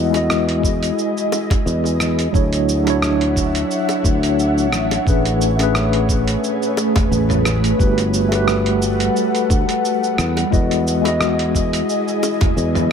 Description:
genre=sunset chillout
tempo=88 BPM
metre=4/4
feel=swing 55% on 16ths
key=unclear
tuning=A4 = 440 Hz
part: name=mellow tine electric piano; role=accompaniment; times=0.0-12.9 s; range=F#3 to D#5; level=-20 LUFS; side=moving between left 7 dB and right 7 dB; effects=medium stereo tremolo, auto-pan, dub echo
part: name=ethereal airy pad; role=sustained chords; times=0.0-12.9 s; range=G3 to F#5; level=-22 LUFS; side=left 1 dB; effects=ensemble chorus, built-in reverb
part: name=sustaining fretless electric bass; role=bass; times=0.0-12.9 s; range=G1 to E2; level=-20 LUFS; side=equal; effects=none
part: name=dusty soul sampler-style drum kit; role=drums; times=0.1-12.9 s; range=hi-hat, rim click, shaker, toms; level=-24 LUFS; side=right 2 dB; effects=none
part: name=bongos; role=percussion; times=0.1-12.5 s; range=none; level=-30 LUFS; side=left 4 dB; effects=none
part: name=electronic kick drum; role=drums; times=0.6-12.5 s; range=none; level=-18 LUFS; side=equal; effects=none
room=moderate spring reverb, RT60 1.9 s, digital ambience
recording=echo-heavy mix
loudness=-15 LUFS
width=side -7 dB against mid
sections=0.0-12.9 A section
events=none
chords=0.0 Emaj9; 2.3 Dmaj9; 5.1 Amaj9; 7.8 Gmaj9; 10.2 Emaj9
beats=0.29 0.98 1.66 | 2.34 3.02 3.70 4.38 | 5.07 5.75 6.43 7.11 | 7.79 8.48 9.16 9.84 | 10.52 11.20 11.88 12.57

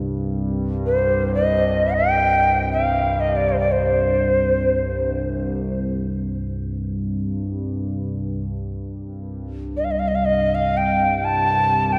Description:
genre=world meditative, free-time meditation music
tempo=free time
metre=none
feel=none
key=C dorian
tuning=A4 = 440 Hz
part: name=analog drone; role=drone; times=0.0-12.0 s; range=C2 to G2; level=-26 LUFS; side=equal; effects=chorus
part: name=Native American-style cedar flute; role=melody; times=0.9-12.0 s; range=C5 to A5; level=-21 LUFS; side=equal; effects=delay
room=wet lush hall reverb, RT60 2.8 s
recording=dreamy mix soaked in reverb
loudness=-21 LUFS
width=mono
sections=0.0-8.6 A section; 8.6-12.0 A section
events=none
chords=none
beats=free time

